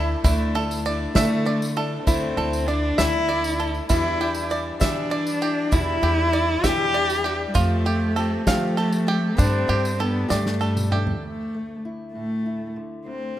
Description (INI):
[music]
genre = indie folk with a building arrangement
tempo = 66 BPM (dotted quarters)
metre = 6/8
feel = straight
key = unclear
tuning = A4 = 442 Hz
[part]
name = picked steel-string acoustic guitar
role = accompaniment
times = 0.0-11.2 s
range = E2 to G4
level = -29 LUFS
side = left 5 dB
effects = none
[part]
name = bluegrass banjo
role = arpeggios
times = 0.0-11.2 s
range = D4 to F5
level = -28 LUFS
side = right 5 dB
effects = analog delay
[part]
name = upright bass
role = bass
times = 0.0-11.1 s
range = D2 to F3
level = -26 LUFS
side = equal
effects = none
[part]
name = warm cello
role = melody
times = 0.2-13.4 s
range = G3 to G4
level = -24 LUFS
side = equal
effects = none
[part]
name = unplugged drum kit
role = drums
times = 0.2-11.2 s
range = kick drum, ride cymbal, snare drum, toms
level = -27 LUFS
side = equal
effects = none
[part]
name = tambourine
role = percussion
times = 0.3-10.9 s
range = none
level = -37 LUFS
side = left 2 dB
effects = none
[part]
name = fingerpicked steel-string acoustic guitar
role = accompaniment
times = 11.2-13.4 s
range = D2 to E4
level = -34 LUFS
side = left 2 dB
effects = none
[sound]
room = light reverb, studio reverb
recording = rough home demo mix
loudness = -20 LUFS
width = side -12 dB against mid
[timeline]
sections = 0.0-11.2 A section; 11.2-13.4 B section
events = drum fill 10.3-11.2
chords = 0.0 Dsus2; 3.9 Em7; 7.6 Fadd9; 9.4 Gsus2; 11.2 Dsus2